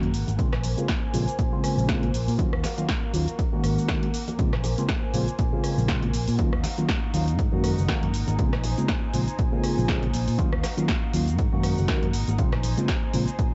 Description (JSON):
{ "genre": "filtered disco house", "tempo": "120 BPM", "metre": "4/4", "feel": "swing 56% on 16ths", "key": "Bb minor", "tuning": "A4 = 440 Hz", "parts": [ { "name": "tine electric piano", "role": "accompaniment", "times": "0.0-13.3 s", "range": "Db3 to Gb4", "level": "-30 LUFS", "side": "equal", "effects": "overdrive, phaser, sidechain pumping, low-pass filter" }, { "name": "clear chamber violin section", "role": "sustained chords", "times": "0.0-13.5 s", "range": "Bb3 to Ab5", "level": "-38 LUFS", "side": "equal", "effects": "sidechain pumping, low-pass filter" }, { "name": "fingered electric bass", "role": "bass", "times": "0.0-13.5 s", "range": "Gb1 to Bb2", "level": "-29 LUFS", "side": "equal", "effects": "transformer saturation, sidechain pumping, low-pass filter" }, { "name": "punchy analog drum machine", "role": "drums", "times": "0.0-13.5 s", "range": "hi-hat, rim click, shaker, snare drum", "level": "-34 LUFS", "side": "equal", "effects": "sidechain pumping on hats, cassette tape, sidechain pumping on perc" }, { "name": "congas and tambourine", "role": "percussion", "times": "0.0-13.5 s", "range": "none", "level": "-38 LUFS", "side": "equal", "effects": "none" }, { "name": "electronic kick drum", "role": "drums", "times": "0.4-13.5 s", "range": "none", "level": "-29 LUFS", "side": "equal", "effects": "cassette tape" } ], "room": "light reverb", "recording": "home recording on cassette, nothing above 7.9 kHz", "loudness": "-25 LUFS", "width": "mono", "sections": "0.0-13.5 A section", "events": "filter sweep 0.0-13.5", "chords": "0.4 Bbm9; 2.4 Ebm9; 3.4 Ab9sus4; 4.4 Bbm9; 6.4 Ebm9; 7.4 Ab9sus4; 8.4 Bbm9; 10.4 Ebm9; 11.4 Ab9sus4; 12.4 Bbm9" }